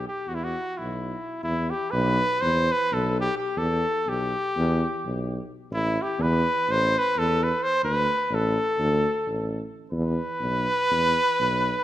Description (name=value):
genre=balkan folk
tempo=255 BPM (eighths)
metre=9/8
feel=straight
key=E minor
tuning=A4 = 442 Hz
part: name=warm cornet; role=melody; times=0.0-11.8 s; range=E4 to C5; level=-24 LUFS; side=equal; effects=none
part: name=mellow tuba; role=bass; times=0.0-11.8 s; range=A1 to E2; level=-27 LUFS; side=equal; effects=none
room=moderate scoring stage reverb, RT60 1.7 s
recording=minimal, uncompressed stereo recording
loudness=-22 LUFS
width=side -13 dB against mid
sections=0.0-1.4 A section; 1.4-11.8 B section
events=none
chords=0.0 E5; 1.4 Em; 5.7 A5; 7.8 D5; 9.9 E5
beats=0.01 0.25 0.49 0.73 0.97 1.21 | 1.44 1.68 1.92 2.16 2.40 2.63 2.87 3.11 3.35 | 3.58 3.82 4.05 4.29 4.53 4.76 5.00 5.23 5.47 | 5.70 5.94 6.17 6.41 6.64 6.88 7.11 7.35 7.58 | 7.82 8.05 8.29 8.52 8.76 8.99 9.22 9.46 9.69 | 9.93 10.16 10.40 10.63 10.87 11.10 11.33 11.57 11.80